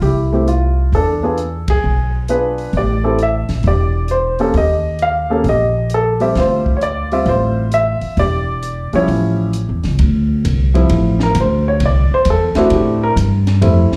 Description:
jazz piano trio; 132 BPM; 4/4; swing 67% on 8ths; D minor; A4 = 440 Hz
dark baby grand piano; melody; 0.0-13.9 s; F3 to F5; -18 LUFS; equal
upright bass; bass; 0.0-13.9 s; E1 to A2; -18 LUFS; equal
compact cocktail drum kit; drums; 0.0-14.0 s; hi-hat, kick drum, ride cymbal, snare drum; -27 LUFS; equal
light reverb, small room ambience; live gig heard through the venue's PA, club reverb; -15 LUFS; mono
0.0-10.0 A section; 10.0-14.0 B section
band accent 1.6; grand piano solo 10.0-14.0
0.0 Fmaj7(no3); 0.9 E7b9; 2.7 Am7; 4.6 Eb(#11); 6.4 Dm11; 8.2 Em7; 9.1 A7b13; 10.0 Dm11; 11.8 C69

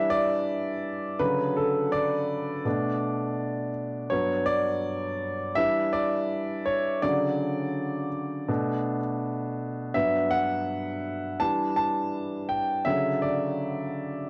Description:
soul; 82 BPM; 4/4; straight; A4 = 440 Hz
warm concert grand piano; solo; 0.0-14.3 s; G2 to A5; -28 LUFS; equal; cassette tape
moderate small room reverb, RT60 0.5 s; home recording on cassette; -28 LUFS; mono
0.0-14.3 A section
grand piano solo 0.0-14.3
0.0 Em7; 1.2 Dmaj7; 2.7 Bm7; 4.1 Gmaj7; 5.6 Em7; 7.0 Dmaj7; 8.5 Bm7; 9.9 Gmaj7; 11.4 Em7; 12.9 Dmaj7

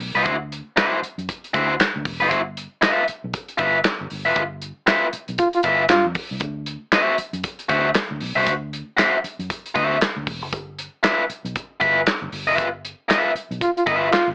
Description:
funk; 117 BPM; 4/4; swing 60% on 16ths; A4 = 438 Hz
vintage muted fingered electric bass; bass; 0.0-14.3 s; E1 to G2; -31 LUFS; equal
warm soul drum kit; drums; 0.0-14.3 s; handclaps, hi-hat, kick drum, snare drum; -22 LUFS; equal
biting overdriven guitar; accompaniment; 0.2-14.1 s; E4 to E5; -18 LUFS; left 1 dB
clear trombone; second line; 5.4-6.1, 13.6-14.3 s; F4; -18 LUFS; equal
light reverb; AM radio sound; -18 LUFS; side -27 dB against mid
0.0-14.3 A section
band accent 4.4-6.4, 12.6-14.3
0.0 D9; 2.3 G6; 6.4 D9; 10.5 G6

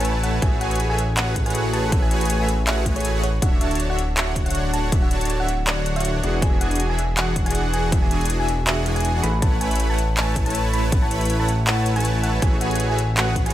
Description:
future bass; 160 BPM; 4/4; swing 54% on 16ths, half-time; A major; A4 = 442 Hz
thumb-piano-like synth pluck; melody; 0.0-13.5 s; C#5 to B5; -29 LUFS; left 1 dB; chorus, cassette tape, sidechain pumping, ping-pong delay
soft supersaw; riff; 0.0-13.5 s; D3 to B5; -24 LUFS; right 1 dB; sidechain pumping
fat analog bass; bass; 0.0-13.5 s; D1 to A1; -23 LUFS; equal; sidechain pumping
trap drum kit; drums; 0.0-13.5 s; handclaps, hi-hat; -26 LUFS; left 1 dB
electronic kick drum; drums; 0.4-13.4 s; -21 LUFS; equal
little or no reverb; -18 LUFS; side -13 dB against mid
0.0-13.5 A section
0.4 F#m11/A; 3.4 Dmaj7; 6.2 E7; 9.2 A69; 12.4 F#m11/A

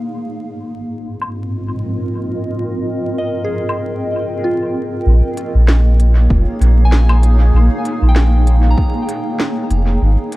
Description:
ambient dub; 97 BPM; 4/4; swing 55% on 16ths; Bb dorian; A4 = 440 Hz
granular cloud pad; sustained chords; 0.0-10.4 s; Ab2 to G5; -21 LUFS; right 1 dB; built-in reverb
organic electronic drum kit; drums; 1.2-10.4 s; hi-hat, snare drum, woodblock; -24 LUFS; equal; low-pass filter on perc, low-pass filter on hats, low-pass filter on snare, low-pass filter on room, dub echo
soft synth bell; arpeggios; 3.2-10.4 s; F4 to Bb5; -24 LUFS; left 1 dB; chorus, dub echo
soft dub sub bass; bass; 5.1-10.2 s; F1 to Bb1; -10 LUFS; equal; tube saturation
electronic kick drum; drums; 6.3-8.9 s; -16 LUFS; equal; overdrive
little or no reverb; echo-heavy mix, vinyl crackle; -13 LUFS; side -18 dB against mid
0.0-5.1 A section; 5.1-10.4 B section
0.1 Ab69; 5.1 Bbm7

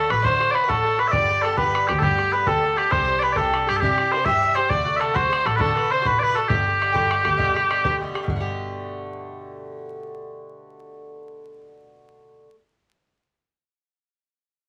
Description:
celtic folk, Celtic slide; 134 BPM (dotted quarters); 12/8; straight; G major; A4 = 441 Hz
mellow small bagpipes; melody; 0.0-8.0 s; G4 to E5; -22 LUFS; equal
bright fiddle; second line; 0.0-8.0 s; G4 to E5; -32 LUFS; equal
Irish bouzouki; accompaniment; 0.0-12.6 s; G2 to G4; -31 LUFS; equal
clear double bass; bass; 0.0-12.5 s; G1 to D3; -32 LUFS; equal
bodhran; percussion; 0.1-8.4 s; -31 LUFS; equal
wet small room reverb, RT60 0.5 s; vinyl crackle; -21 LUFS; mono
0.0-8.3 A section; 8.3-11.9 B section
0.0 D; 1.1 G; 2.9 Cadd9; 4.7 D7; 6.5 Gadd9

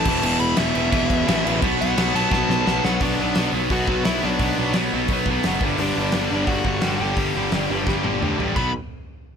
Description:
punk rock; 173 BPM; 4/4; straight; B minor; A4 = 439 Hz
dark smooth lead guitar; melody; 0.0-8.7 s; D4 to B5; -26 LUFS; left 3 dB; overdrive
distorted electric guitar; riff; 0.0-8.7 s; E2 to B3; -21 LUFS; equal; overdrive
fuzz picked electric bass; bass; 0.0-8.7 s; E1 to D2; -26 LUFS; equal; overdrive
big rock drum kit; drums; 0.1-8.6 s; crash cymbal, hi-hat, kick drum, snare drum, toms; -25 LUFS; equal
little or no reverb; -18 LUFS; side -7 dB against mid
0.0-3.0 A section; 3.0-8.6 B section
lead electric guitar solo 0.0-3.0; drum fill 2.3-3.0, 7.9-8.6
0.1 E5; 1.6 B5; 3.0 Bm; 5.6 G5; 8.6 B5

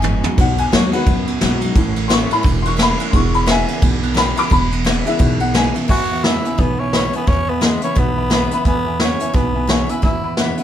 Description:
rockabilly; 174 BPM; 4/4; swing 59% on 8ths; E major; A4 = 441 Hz
picked steel-string acoustic guitar; accompaniment; 0.0-10.6 s; E2 to F#4; -25 LUFS; left 4 dB
tack piano; accompaniment; 0.0-10.6 s; F#3 to D6; -22 LUFS; left 3 dB
electric guitar through a small old amp; riff; 0.0-10.6 s; E2 to G#3; -24 LUFS; right 5 dB
upright bass; bass; 0.0-10.5 s; E1 to E2; -22 LUFS; equal
vintage brush drum kit; drums; 0.0-10.6 s; crash cymbal, hi-hat, kick drum, ride cymbal, snare drum, toms; -17 LUFS; equal
growling tenor saxophone; melody; 5.9-10.4 s; G#3 to F#4; -21 LUFS; equal
moderate studio reverb, RT60 0.5 s; band playing live in one room; -14 LUFS; side -10 dB against mid
0.0-5.9 A section; 5.9-10.6 B section
drum fill 0.0-0.4; honky-tonk piano solo 0.0-5.9
0.0 B; 1.8 A; 3.1 E

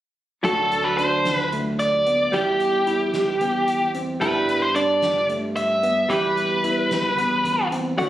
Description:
progressive instrumental, band music in an uneven meter; 223 BPM (eighths); 7/8; straight; A4 = 438 Hz
biting lead guitar; melody; 0.4-8.1 s; G4 to F#5; -20 LUFS; equal; overdrive, slapback echo, plate reverb
vintage hollow-body jazz guitar; accompaniment; 0.4-8.1 s; F#3 to G4; -29 LUFS; equal; plate reverb
barky tine electric piano; arpeggios; 0.4-8.1 s; A3 to G4; -27 LUFS; right 1 dB; plate reverb
smooth synth bass; bass; 0.4-8.1 s; D2 to G2; -32 LUFS; equal
soft-mallet drum kit; drums; 0.4-8.1 s; hi-hat, kick drum, snare drum; -36 LUFS; left 1 dB
moderate studio reverb, RT60 0.8 s; recorded on a phone in the room, studio reverb; -19 LUFS; side -13 dB against mid
0.4-8.1 A section
0.4 D; 2.3 Em; 4.2 G; 6.1 Em

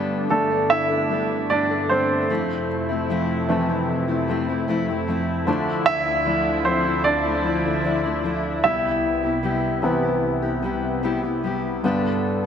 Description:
pop ballad; 76 BPM; 4/4; straight; C major; A4 = 438 Hz
clear baby grand piano; accompaniment; 0.0-12.5 s; F2 to E5; -22 LUFS; right 1 dB
lush unison pad; sustained chords; 0.0-12.5 s; C2 to A4; -26 LUFS; equal; chorus
fingerpicked steel-string acoustic guitar; arpeggios; 0.0-12.4 s; C3 to A4; -26 LUFS; left 4 dB
moderate lush hall reverb, RT60 2.6 s; -20 LUFS; side -8 dB against mid
0.0-12.5 A section
grand piano solo 0.0-12.5
0.0 Gadd9; 2.3 Fmaj7; 5.5 Dmadd9; 8.6 Cmaj7; 11.8 Gadd9

